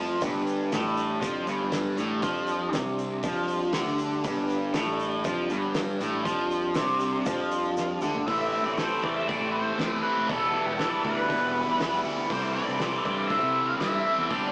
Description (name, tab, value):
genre	psychedelic rock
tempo	119 BPM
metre	4/4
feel	straight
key	unclear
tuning	A4 = 440 Hz
part	tonewheel organ	sustained chords	0.0-14.5 s	G3 to G5	-35 LUFS	equal	slow rotary speaker
part	cranked stack guitar	riff	0.0-14.5 s	E2 to G4	-27 LUFS	equal	overdrive, phaser
part	fuzz fingered electric bass	bass	0.0-14.5 s	E1 to C3	-34 LUFS	equal	overdrive
part	damped 70s drum kit	drums	0.2-14.4 s	hi-hat, kick drum, snare drum, toms	-34 LUFS	equal	none
part	tube shaker	percussion	0.2-8.1 s	none	-50 LUFS	left 1 dB	none
part	octave-fuzz lead guitar	melody	8.3-14.5 s	G4 to F5	-28 LUFS	equal	wah, distortion
room	wet stone room reverb, RT60 1.1 s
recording	rough rehearsal-room recording, small speaker sound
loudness	-24 LUFS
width	side -26 dB against mid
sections	0.0-8.3 A section; 8.3-14.5 B section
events	drum fill 7.8-8.3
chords	0.2 G5; 8.3 Am7; 10.3 Em7; 12.3 C6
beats	| 0.22 0.72 1.23 1.73 | 2.23 2.74 3.24 3.74 | 4.25 4.75 5.25 5.75 | 6.26 6.76 7.26 7.77 | 8.27 8.78 9.28 9.78 | 10.29 10.79 11.30 11.80 | 12.30 12.81 13.31 13.81 | 14.31